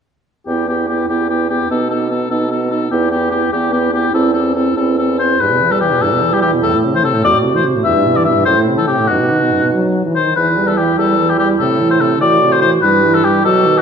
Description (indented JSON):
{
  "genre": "quick classical-period movement for wind quintet",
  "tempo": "97 BPM (dotted quarters)",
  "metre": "6/8",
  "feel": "straight",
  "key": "E minor",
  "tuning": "A4 = 442 Hz",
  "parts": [
    { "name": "warm oboe", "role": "second line", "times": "0.5-13.8 s", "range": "F#4 to E5", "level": "-15 LUFS", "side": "left 4 dB", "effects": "none" },
    { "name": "dark clarinet", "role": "accompaniment", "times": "0.5-13.8 s", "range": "D#4 to G4", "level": "-18 LUFS", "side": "right 6 dB", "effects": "none" },
    { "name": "warm French horn", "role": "accompaniment", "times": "0.5-13.8 s", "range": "E2 to C4", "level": "-18 LUFS", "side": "equal", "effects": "none" },
    { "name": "warm bassoon", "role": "bass", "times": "0.5-13.8 s", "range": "E2 to B2", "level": "-19 LUFS", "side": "right 2 dB", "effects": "none" }
  ],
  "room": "wet recital hall reverb, RT60 1.7 s",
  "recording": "none",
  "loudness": "-12 LUFS",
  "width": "side -6 dB against mid",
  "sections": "0.5-5.4 A section; 5.4-13.8 B section",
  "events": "none",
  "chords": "0.5 Em; 1.7 B7; 2.9 Em; 4.1 Am/E; 5.4 Em; 6.6 Am/E; 7.8 Em; 8.5 F#m7b5; 9.1 B/F#; 10.4 Em; 11.6 Am; 12.8 Em/G"
}